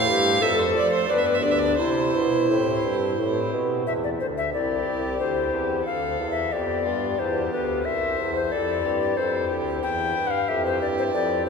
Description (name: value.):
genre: classical, baroque-style sonata movement with continuo.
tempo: 90 BPM.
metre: 3/4.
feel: straight.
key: C major.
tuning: A4 = 440 Hz.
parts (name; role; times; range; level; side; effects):
tenor recorder; melody; 0.0-11.5 s; D4 to G5; -25 LUFS; left 4 dB; none.
rich violin; second line; 0.0-11.5 s; E4 to F5; -27 LUFS; right 3 dB; none.
pipe organ, foundations; accompaniment; 0.0-11.5 s; C2 to C5; -29 LUFS; equal; none.
mellow bassoon; bass; 0.0-11.5 s; C2 to F3; -28 LUFS; right 2 dB; none.
room: wet church reverb, RT60 2.9 s.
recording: recorded in a church or concert hall.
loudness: -21 LUFS.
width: side -5 dB against mid.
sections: 0.0-3.9 A section; 3.9-11.5 A section.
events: none.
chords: 0.4 F; 1.1 G; 1.8 C; 5.9 G7/D; 7.9 C; 9.8 C/E.